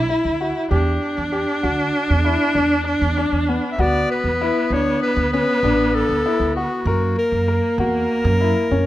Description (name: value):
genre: contemporary instrumental, chamber music in an uneven meter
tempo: 98 BPM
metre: 5/4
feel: straight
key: B minor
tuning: A4 = 440 Hz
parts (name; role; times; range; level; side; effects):
- rich viola; second line; 0.0-8.9 s; A#3 to E4; -22 LUFS; right 1 dB; none
- upright bass; bass; 0.0-8.9 s; A1 to F#2; -22 LUFS; right 1 dB; none
- warm grand piano; arpeggios; 0.1-8.9 s; B3 to A#4; -23 LUFS; left 3 dB; none
- bright clarinet; melody; 3.7-8.9 s; F#4 to E5; -21 LUFS; left 2 dB; none
room: light reverb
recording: close, detailed microphones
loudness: -17 LUFS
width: side -14 dB against mid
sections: 0.0-8.9 A section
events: none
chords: 0.0 Bm (rootless); 0.7 Em7; 3.8 Bm7/D; 6.9 F#